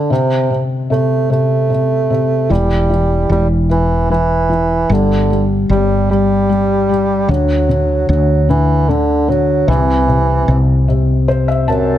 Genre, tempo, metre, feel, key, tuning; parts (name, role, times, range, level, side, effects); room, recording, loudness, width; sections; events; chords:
pop; 50 BPM (dotted quarters); 6/8; straight; E minor; A4 = 440 Hz
mellow bassoon; melody; 0.0-12.0 s; F#2 to A3; -16 LUFS; right 4 dB
felt-muted upright piano; accompaniment; 0.0-12.0 s; C3 to A5; -16 LUFS; left 3 dB
woody fretless electric bass; bass; 2.5-12.0 s; E1 to D2; -16 LUFS; equal
light reverb; -12 LUFS; side -12 dB against mid
0.0-12.0 A section
felt piano fill 10.9-12.0
0.0 N.C.; 2.5 Em; 4.9 G5; 7.3 D; 9.7 C6